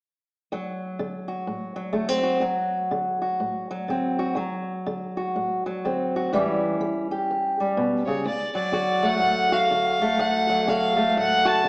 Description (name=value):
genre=acoustic country blues, solo or duo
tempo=124 BPM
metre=4/4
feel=swing 60% on 8ths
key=D major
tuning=A4 = 440 Hz
part: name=fingerpicked old ladder-braced acoustic guitar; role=accompaniment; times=0.5-11.7 s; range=D2 to G4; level=-26 LUFS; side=equal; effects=none
part: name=rich fiddle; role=melody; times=8.1-11.7 s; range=C#5 to A5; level=-24 LUFS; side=equal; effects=none
room=wet recital hall reverb, RT60 1.6 s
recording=recorded in a church or concert hall, small speaker sound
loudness=-25 LUFS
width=mono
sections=0.5-8.3 A section; 8.3-11.7 B section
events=none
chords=0.5 D7; 6.3 A7; 8.3 D